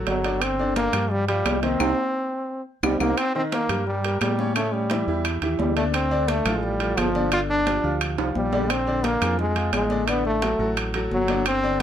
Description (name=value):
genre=latin, salsa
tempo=174 BPM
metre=4/4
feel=straight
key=unclear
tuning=A4 = 443 Hz
part: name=clear grand piano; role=accompaniment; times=0.0-11.8 s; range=Db3 to Eb5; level=-28 LUFS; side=equal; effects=none
part: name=fingered electric bass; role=bass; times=0.0-11.8 s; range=G1 to A2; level=-28 LUFS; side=equal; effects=none
part: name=brilliant trombone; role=melody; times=0.1-11.8 s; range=F3 to F4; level=-24 LUFS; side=equal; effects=none
part: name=congas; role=percussion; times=0.1-11.8 s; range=none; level=-30 LUFS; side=left 4 dB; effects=none
part: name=timbales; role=percussion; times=0.1-11.8 s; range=none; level=-29 LUFS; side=right 5 dB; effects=none
part: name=claves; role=percussion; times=0.4-11.6 s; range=none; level=-32 LUFS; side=left 5 dB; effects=none
room=light reverb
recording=none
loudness=-21 LUFS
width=side -9 dB against mid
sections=0.0-3.2 A section; 3.2-11.8 A section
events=drum fill 1.8-3.2, 8.2-8.7; band accent 1.8-3.2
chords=0.4 G7sus4; 1.8 Cm; 3.2 Eb7#11; 4.6 A7; 5.9 Dm7; 7.3 G7(no3); 8.7 Bb7; 10.1 D/A